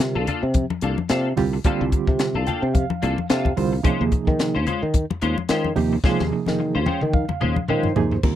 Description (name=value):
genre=electric jazz fusion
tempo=109 BPM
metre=4/4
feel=swing 56% on 16ths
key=unclear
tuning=A4 = 440 Hz
part: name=barky reed electric piano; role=accompaniment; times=0.0-8.4 s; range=C3 to G5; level=-25 LUFS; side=right 7 dB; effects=fast tremolo
part: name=clean electric guitar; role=stabs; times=0.0-8.2 s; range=Ab3 to C5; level=-27 LUFS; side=left 4 dB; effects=analog chorus
part: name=sustaining fretless electric bass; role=bass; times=0.0-8.4 s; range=C2 to Eb3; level=-23 LUFS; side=left 1 dB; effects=analog chorus
part: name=crisp fusion drum kit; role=drums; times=0.0-8.4 s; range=crash cymbal, hi-hat, kick drum, snare drum, toms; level=-22 LUFS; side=left 1 dB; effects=none
part: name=congas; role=percussion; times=0.3-8.1 s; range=none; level=-28 LUFS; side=left 4 dB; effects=none
room=light reverb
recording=dry, close 1970s-style studio recording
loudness=-19 LUFS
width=side -11 dB against mid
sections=0.0-8.2 A section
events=reed electric piano fill 2.2-3.8, 6.6-8.2; drum fill 6.0-8.2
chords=0.0 C13sus4; 3.8 Eb13sus4